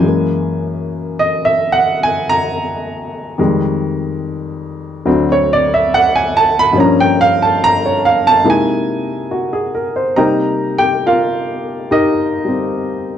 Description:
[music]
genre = solo jazz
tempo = 71 BPM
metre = 4/4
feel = swing 69% on 8ths, rubato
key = unclear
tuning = A4 = 440 Hz
[part]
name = warm upright piano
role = solo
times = 0.0-13.2 s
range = D2 to B5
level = -13 LUFS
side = equal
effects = none
[sound]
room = light reverb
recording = none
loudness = -12 LUFS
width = side -9 dB against mid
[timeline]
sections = 0.0-10.2 A section; 10.2-13.2 B section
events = upright piano solo 0.0-10.2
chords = 0.0 Gb9; 3.4 Fm9; 5.1 D7; 6.7 Gm7b5; 8.4 C7alt; 10.2 Cm7

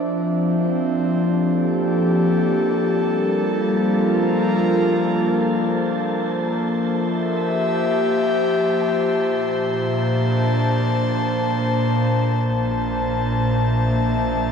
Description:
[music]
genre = ambient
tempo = 76 BPM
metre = 4/4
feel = straight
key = Bb lydian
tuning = A4 = 437 Hz
[part]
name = airy breathy pad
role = sustained chords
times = 0.0-14.5 s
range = Bb2 to A5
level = -19 LUFS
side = equal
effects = chorus, shimmer reverb
[part]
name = celesta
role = arpeggios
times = 0.0-2.6 s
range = E4 to C5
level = -39 LUFS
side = left 2 dB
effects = none
[part]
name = analog drone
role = drone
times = 1.7-12.5 s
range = F3 to Bb3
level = -25 LUFS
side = left 2 dB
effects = chorus
[part]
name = wind-like tuned noise texture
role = texture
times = 0.8-12.5 s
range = A5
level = -36 LUFS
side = right 4 dB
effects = built-in reverb, shimmer reverb
[part]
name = dark studio double bass section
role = bass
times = 12.5-14.5 s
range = Bb1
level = -28 LUFS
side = equal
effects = none
[sound]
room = wet concert hall reverb, RT60 2.1 s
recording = cassette tape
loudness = -18 LUFS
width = side -6 dB against mid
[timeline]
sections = 0.0-12.5 A section; 12.5-14.5 B section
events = fade-in on synth texture 0.0-12.5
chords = 0.0 F69; 3.0 Gm11; 6.1 Am7; 9.3 Bbmaj7; 12.5 Bbmaj9#11

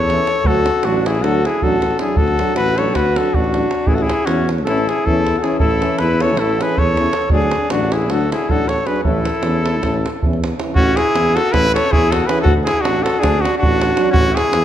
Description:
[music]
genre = balkan folk, Balkan brass band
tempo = 314 BPM (eighths)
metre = 9/8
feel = straight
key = A major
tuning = A4 = 440 Hz
[part]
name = clear trumpet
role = melody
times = 0.0-14.6 s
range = F#4 to C#5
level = -18 LUFS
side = equal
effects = slapback echo
[part]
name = bright alto saxophone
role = second line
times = 0.0-14.6 s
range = C#4 to A4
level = -22 LUFS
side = left 5 dB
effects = none
[part]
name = mellow tuba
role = bass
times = 0.0-14.6 s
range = A1 to E2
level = -21 LUFS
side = equal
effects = none
[part]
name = clear French horn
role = accompaniment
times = 0.1-14.1 s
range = C#4 to D4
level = -27 LUFS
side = left 5 dB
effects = none
[part]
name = warm euphonium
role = accompaniment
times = 0.1-14.1 s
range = E3 to F#3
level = -26 LUFS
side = right 6 dB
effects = none
[part]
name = davul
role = percussion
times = 0.1-14.6 s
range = none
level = -20 LUFS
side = right 2 dB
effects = none
[sound]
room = moderate scoring stage reverb, RT60 1.9 s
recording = dark, warm production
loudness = -14 LUFS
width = side -11 dB against mid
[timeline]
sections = 0.0-10.8 A section; 10.8-14.6 B section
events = none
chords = 0.4 D; 3.9 A; 7.3 D; 9.0 A; 12.5 A5

